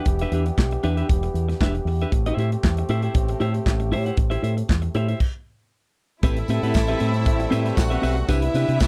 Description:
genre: disco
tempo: 117 BPM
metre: 4/4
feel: straight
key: unclear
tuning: A4 = 441 Hz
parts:
  - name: clean electric guitar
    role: accompaniment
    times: 0.0-8.8 s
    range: C4 to F#5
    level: -29 LUFS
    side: equal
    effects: none
  - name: clear French horn section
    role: sustained chords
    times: 0.0-8.9 s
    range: C3 to G4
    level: -34 LUFS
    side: equal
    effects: none
  - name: fingered electric bass with an envelope filter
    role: bass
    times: 0.1-8.9 s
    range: E1 to C3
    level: -26 LUFS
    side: equal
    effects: none
  - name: modern studio drum kit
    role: drums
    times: 0.1-8.9 s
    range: crash cymbal, handclaps, hi-hat, kick drum, snare drum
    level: -24 LUFS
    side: equal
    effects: none
  - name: rich studio string section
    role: second line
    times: 6.2-8.9 s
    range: E4 to F#5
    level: -31 LUFS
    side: equal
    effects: none
  - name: mellow horn section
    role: stabs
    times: 6.2-8.9 s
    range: A3 to B4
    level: -33 LUFS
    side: equal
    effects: none
  - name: tambourine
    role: percussion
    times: 6.2-8.9 s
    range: none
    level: -44 LUFS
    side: equal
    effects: none
room: little or no reverb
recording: dry, close 1970s-style studio recording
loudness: -22 LUFS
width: mono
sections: 0.0-6.2 A section; 6.2-8.9 B section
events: stop 5.2-6.2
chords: 0.0 Em7; 2.1 Am7; 6.2 Am9; 8.3 Cmaj9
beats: | 0.06 0.57 1.09 1.60 | 2.12 2.63 3.15 3.66 | 4.17 4.69 5.20 5.72 | 6.23 6.75 7.26 7.78 | 8.29 8.81

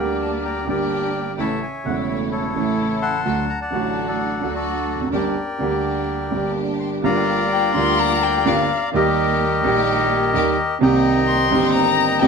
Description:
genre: tango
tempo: 128 BPM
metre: 4/4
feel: rubato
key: G minor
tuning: A4 = 439 Hz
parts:
  - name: bandoneon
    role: melody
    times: 0.0-12.3 s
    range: E4 to C6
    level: -22 LUFS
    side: left 4 dB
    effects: none
  - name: warm concert grand piano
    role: accompaniment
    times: 0.0-12.3 s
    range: E1 to G4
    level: -20 LUFS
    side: right 3 dB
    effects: none
  - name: rich studio string section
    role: stabs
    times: 0.0-12.3 s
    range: A3 to G4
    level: -27 LUFS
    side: equal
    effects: none
  - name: dark violin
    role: second line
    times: 7.5-12.3 s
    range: F5 to C6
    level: -20 LUFS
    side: left 7 dB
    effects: none
room: wet studio reverb, RT60 0.8 s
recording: band playing live in one room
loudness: -17 LUFS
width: side -5 dB against mid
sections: 0.0-7.0 A section; 7.0-12.3 B section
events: none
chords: 0.0 Gm; 1.4 A; 3.2 D; 5.1 Gm; 7.0 Gm7; 8.9 Eb; 10.8 Cm7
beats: 0.44 0.91 | 1.38 1.85 2.31 2.78 | 3.25 3.72 4.19 4.66 | 5.13 5.60 6.08 6.56 | 7.04 7.51 7.99 8.46 | 8.93 9.40 9.87 10.34 | 10.80 11.27 11.74 12.20

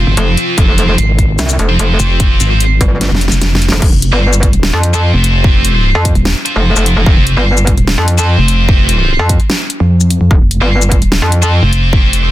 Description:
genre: heavy wobble dubstep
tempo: 148 BPM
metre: 4/4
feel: half-time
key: F minor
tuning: A4 = 440 Hz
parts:
  - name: lush unison pad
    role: sustained chords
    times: 0.0-3.8 s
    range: C3 to F4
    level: -25 LUFS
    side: left 1 dB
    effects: chorus, vintage 12-bit sampler grit, sidechain pumping
  - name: scooped high-gain guitar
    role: stabs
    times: 0.0-12.3 s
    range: C4 to C5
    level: -16 LUFS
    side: right 1 dB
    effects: distortion, tape echo
  - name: pulsing pluck wobble bass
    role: bass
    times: 0.0-12.3 s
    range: Eb1 to F2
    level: -11 LUFS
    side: equal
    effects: chorus, overdrive
  - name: metallic wobble bass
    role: bass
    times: 0.2-11.6 s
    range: F1 to F2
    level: -11 LUFS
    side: equal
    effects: chorus, overdrive
  - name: dubstep drum kit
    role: drums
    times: 0.2-12.2 s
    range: crash cymbal, hi-hat, shaker, snare drum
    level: -16 LUFS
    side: left 1 dB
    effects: none
  - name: electronic kick drum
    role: drums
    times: 0.6-12.0 s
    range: none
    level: -11 LUFS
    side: equal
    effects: none
room: little or no reverb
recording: dense, heavily limited modern master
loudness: -8 LUFS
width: side -14 dB against mid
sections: 0.0-3.8 A section; 3.8-12.3 A section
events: drop 0.0-3.8, 3.8-12.3; kick drops out 3.0-3.8; drum fill 3.0-3.8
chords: 0.0 F5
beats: 0.17 | 0.58 0.98 1.39 1.79 | 2.20 2.60 3.01 3.42 | 3.82 4.23 4.63 5.04 | 5.44 5.85 6.25 6.66 | 7.06 7.47 7.88 8.28 | 8.69 9.09 9.50 9.90 | 10.31 10.71 11.12 11.52 | 11.93

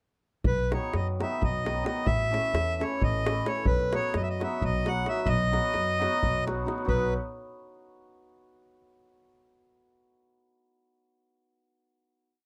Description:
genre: balkan folk, Balkan wedding band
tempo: 261 BPM (eighths)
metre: 7/8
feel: straight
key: B mixolydian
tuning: A4 = 438 Hz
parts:
  - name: upright bass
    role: bass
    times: 0.4-7.1 s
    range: A1 to F#2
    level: -33 LUFS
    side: equal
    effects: none
  - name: davul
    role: percussion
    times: 0.4-7.1 s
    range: none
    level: -33 LUFS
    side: equal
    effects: none
  - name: accordion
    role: melody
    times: 0.5-7.1 s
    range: B4 to F#5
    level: -31 LUFS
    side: equal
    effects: none
  - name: hammered dulcimer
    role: accompaniment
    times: 0.7-7.1 s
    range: D#3 to F#4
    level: -36 LUFS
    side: equal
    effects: none
room: moderate small room ambience, RT60 0.5 s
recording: dark, warm production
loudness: -28 LUFS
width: mono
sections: 0.4-6.9 A section; 6.9-8.5 final chord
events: none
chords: 0.4 B; 2.1 A; 3.7 B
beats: | 0.45 0.68 0.91 1.14 1.36 1.59 1.82 | 2.05 2.28 2.51 2.74 2.97 3.20 3.43 | 3.66 3.89 4.12 4.35 4.58 4.80 5.04 | 5.26 5.49 5.72 5.95 6.18 6.41 6.64 | 6.88 7.11

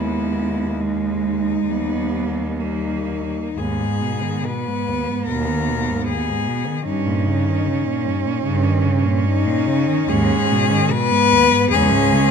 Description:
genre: classical, lyrical piece for cello ensemble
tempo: 59-77 BPM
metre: 4/4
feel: rubato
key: G# minor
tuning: A4 = 437 Hz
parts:
  - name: warm cello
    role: melody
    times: 0.0-12.3 s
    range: D#4 to B4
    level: -22 LUFS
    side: left 9 dB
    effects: none
  - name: warm cello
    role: second line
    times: 0.0-12.3 s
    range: G#3 to C#4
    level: -24 LUFS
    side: right 10 dB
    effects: none
  - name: warm cello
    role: accompaniment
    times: 0.0-12.3 s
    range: D#2 to G#3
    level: -24 LUFS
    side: left 3 dB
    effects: none
  - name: warm cello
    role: bass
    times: 0.0-12.3 s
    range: C#2 to G#2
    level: -23 LUFS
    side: right 2 dB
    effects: none
room: light reverb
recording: close, detailed microphones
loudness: -17 LUFS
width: side -6 dB against mid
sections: 0.0-12.3 A section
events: none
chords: 0.0 G#m/D#; 1.7 D#; 3.6 G#m/D#; 6.9 D#7/G; 10.1 G#m/D#; 11.7 C#m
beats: 0.79 1.69 2.60 | 3.57 4.45 5.29 6.08 | 6.88 7.66 8.45 9.25 | 10.09 10.90 11.71

